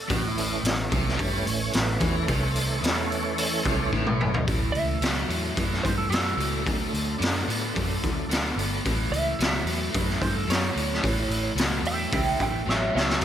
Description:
blues rock power trio and southern rock; 110 BPM; 4/4; straight; A mixolydian; A4 = 440 Hz
overdriven tonewheel organ; sustained chords; 0.0-13.2 s; E3 to C#5; -33 LUFS; right 3 dB; chorus vibrato, fast rotary speaker
crunchy overdriven guitar; riff; 0.1-13.2 s; A2 to B3; -29 LUFS; equal
vintage muted fingered electric bass; bass; 0.1-13.2 s; G1 to A2; -30 LUFS; equal
raw garage drum kit; drums; 0.1-13.2 s; hi-hat, kick drum, snare drum, toms; -26 LUFS; left 1 dB
lightly driven lead guitar; melody; 4.7-13.2 s; A4 to G5; -30 LUFS; right 3 dB; wah
little or no reverb; -23 LUFS; side -10 dB against mid
0.0-4.5 A section; 4.5-13.2 B section
tonewheel organ solo 0.0-4.5; drum fill 3.9-4.5, 12.7-13.2
0.0 A; 6.7 D; 8.8 A

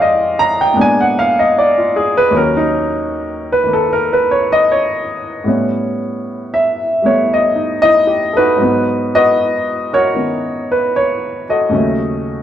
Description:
solo jazz; 77 BPM; 4/4; swing 69% on 8ths; G# minor; A4 = 440 Hz
warm upright piano; solo; 0.0-12.4 s; D#2 to A#5; -12 LUFS; equal
wet spring reverb, RT60 1.1 s; heard from further back in the room; -12 LUFS; side -10 dB against mid
0.0-8.6 A section; 8.6-12.4 B section
upright piano solo 0.0-8.6
0.0 Fm9; 0.8 A#7b9; 2.3 D#m7; 5.5 A9; 8.6 G#m9; 11.7 D#m7b5

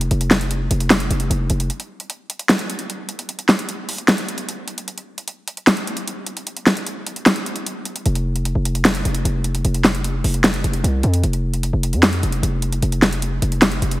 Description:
hip hop, trap; 151 BPM; 4/4; half-time; A4 = 445 Hz
distorted 808-style bass; bass; 0.0-1.7, 8.1-14.0 s; F1 to F2; -19 LUFS; equal; distortion
dubstep drum kit; drums; 0.0-14.0 s; hi-hat, snare drum; -18 LUFS; equal
light reverb; heavily compressed radio sound, multiband compression; -17 LUFS; side -17 dB against mid
0.0-1.7 A section; 1.7-14.0 B section
break 1.7-8.1

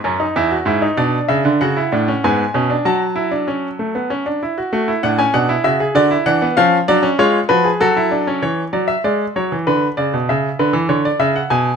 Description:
classical, baroque-style 3-part fugue for grand piano; 97 BPM; 3/4; straight; F# minor; A4 = 442 Hz
bright baby grand piano; solo; 0.0-11.8 s; E2 to A5; -14 LUFS; equal
moderate stone room reverb, RT60 1.0 s; -14 LUFS; side -6 dB against mid
0.0-4.7 A section; 4.7-8.4 B section; 8.4-11.8 A section
0.4 E; 1.0 Bmadd11; 1.6 F#m/C#; 2.2 C#5/G#; 2.9 F#m; 4.7 F#m/A; 6.0 Bm/D; 6.6 C#7/E#; 7.8 F#m; 8.4 C#m/E; 9.7 Bm/D; 10.3 Dmaj7sus2/C#

